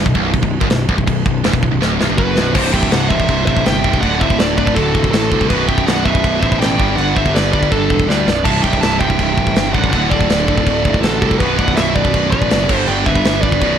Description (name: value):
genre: heavy metal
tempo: 163 BPM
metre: 4/4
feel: straight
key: B phrygian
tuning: A4 = 440 Hz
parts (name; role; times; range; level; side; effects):
- high-gain distorted guitar; riff; 0.0-13.8 s; B1 to G3; -20 LUFS; left 12 dB; distortion
- high-gain distorted guitar; riff; 0.0-13.8 s; B1 to G3; -20 LUFS; right 15 dB; distortion
- fuzz picked electric bass; bass; 0.0-13.8 s; B0 to D2; -19 LUFS; equal; overdrive
- tight metal drum kit; drums; 0.1-13.7 s; china cymbal, crash cymbal, kick drum, snare drum; -18 LUFS; equal; none
- high-gain lead guitar; melody; 2.2-13.8 s; A4 to A5; -19 LUFS; equal; distortion
- high-gain lead guitar; second line; 2.2-13.8 s; D4 to E5; -26 LUFS; right 6 dB; distortion
room: little or no reverb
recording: dark, warm production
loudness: -12 LUFS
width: side -8 dB against mid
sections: 0.0-2.5 A section; 2.5-13.8 B section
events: drum fill 1.8-2.5, 8.1-8.5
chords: 0.0 Bm; 2.5 C; 4.0 D; 5.5 B5; 6.8 G; 8.5 C; 9.9 D; 11.4 Bm; 12.7 G